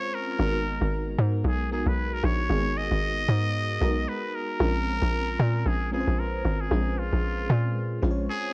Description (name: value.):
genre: amapiano.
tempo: 114 BPM.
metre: 4/4.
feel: swing 58% on 16ths.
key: Bb phrygian.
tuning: A4 = 439 Hz.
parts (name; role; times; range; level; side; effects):
trumpet with straight mute; melody; 0.0-8.5 s; F4 to Eb5; -31 LUFS; equal; cassette tape, tape echo.
FM electric piano with tremolo; accompaniment; 0.0-8.5 s; Ab3 to Db5; -31 LUFS; equal; phaser, cassette tape.
tight log drum bass; bass; 0.4-8.3 s; Ab1 to Bb2; -25 LUFS; equal; none.
room: small room ambience.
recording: home recording on cassette.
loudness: -23 LUFS.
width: side -25 dB against mid.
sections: 0.0-8.5 A section.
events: none.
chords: 0.4 Abm9; 4.6 Bbm9.